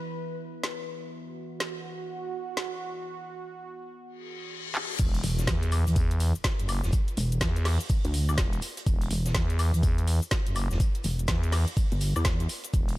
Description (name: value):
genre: bass house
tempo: 124 BPM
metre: 4/4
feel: swing 62% on 16ths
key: unclear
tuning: A4 = 438 Hz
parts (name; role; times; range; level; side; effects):
- sweeping resonant pad; sustained chords; 0.0-5.0 s; E3 to B4; -37 LUFS; right 2 dB; chorus, sidechain pumping
- warbly tape-like pad; texture; 0.0-3.1 s; E4 to B5; -50 LUFS; left 2 dB; chorus, built-in reverb, sidechain pumping
- garage drum kit; drums; 0.6-13.0 s; crash cymbal, handclaps, hi-hat, shaker, snare drum, woodblock; -34 LUFS; left 1 dB; none
- reverse cymbal and impact; sound effects; 4.2-6.9 s; none; -37 LUFS; left 2 dB; none
- growling FM bass; bass; 5.0-13.0 s; E1 to E2; -26 LUFS; equal; tube saturation, sidechain pumping
- electronic kick drum; drums; 5.0-12.9 s; none; -26 LUFS; equal; none
- raw garage drum kit; drums; 5.0-13.0 s; hi-hat, shaker, snare drum; -41 LUFS; equal; sidechain pumping on hats, high-pass filter on hats, high-pass filter on snare, sidechain pumping on perc, high-pass filter on perc, high-pass filter on room
- pulsing pluck wobble bass; bass; 5.2-12.5 s; E1 to E2; -26 LUFS; equal; chorus, tube saturation, sidechain pumping
room: little or no reverb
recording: none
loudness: -25 LUFS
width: side -17 dB against mid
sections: 0.0-5.0 A section; 5.0-13.0 B section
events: reverse cymbal 4.2-5.0; drum fill 4.8; drop 5.0-13.0; impact 5.0-6.9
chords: 0.0 E5; 5.0 N.C.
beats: 0.16 0.64 | 1.12 1.61 2.09 2.58 | 3.06 3.54 4.03 4.51 | 4.99 5.48 5.96 6.45 | 6.93 7.41 7.90 8.38 | 8.87 9.35 9.83 10.32 | 10.80 11.29 11.77 12.25 | 12.74